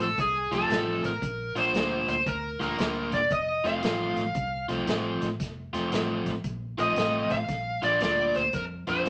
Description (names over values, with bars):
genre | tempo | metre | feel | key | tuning
electric blues shuffle | 115 BPM | 4/4 | swing 65% on 8ths | F major | A4 = 440 Hz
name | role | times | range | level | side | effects
smooth overdriven lead guitar | melody | 0.0-9.1 s | Ab4 to F5 | -29 LUFS | equal | none
overdriven semi-hollow guitar | riff | 0.0-9.1 s | Bb2 to F4 | -33 LUFS | equal | none
vintage muted fingered electric bass | bass | 0.0-9.1 s | E1 to F2 | -40 LUFS | equal | none
vintage drum kit | drums | 0.0-9.1 s | hi-hat, kick drum, snare drum | -36 LUFS | equal | none
room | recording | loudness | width
moderate studio reverb, RT60 0.8 s | none | -28 LUFS | mono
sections
0.0-9.1 A section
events
none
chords
0.0 F; 1.2 Bb; 3.3 F; 7.5 Bb